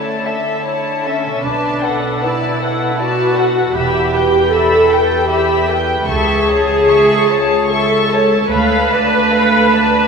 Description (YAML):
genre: classical, slow romantic movement for string orchestra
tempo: 76 BPM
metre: 3/4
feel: uneven beats, rubato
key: A major from 6.1 s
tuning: A4 = 439 Hz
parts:
  - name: dark symphonic violin section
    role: melody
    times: 0.0-10.1 s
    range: E5 to C#6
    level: -20 LUFS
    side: left 5 dB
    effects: none
  - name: dark chamber violin section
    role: second line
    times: 0.0-10.1 s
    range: E4 to G5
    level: -20 LUFS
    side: left 1 dB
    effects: none
  - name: warm studio viola section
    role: accompaniment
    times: 0.0-10.1 s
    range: A3 to B4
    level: -15 LUFS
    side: right 1 dB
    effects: none
  - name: warm symphonic cello section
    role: bass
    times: 0.0-10.1 s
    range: C#2 to D3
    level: -21 LUFS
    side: right 4 dB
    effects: none
  - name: warm symphonic double bass section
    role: bass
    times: 1.4-9.3 s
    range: E1 to D2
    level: -28 LUFS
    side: right 3 dB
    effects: none
room: wet cathedral reverb, RT60 4.8 s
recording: recorded in a church or concert hall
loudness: -12 LUFS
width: side -5 dB against mid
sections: 0.0-10.1 A section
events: none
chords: 0.0 A/D; 1.4 Bm7; 3.8 Em; 6.1 A/C#; 8.5 Bm7b5/D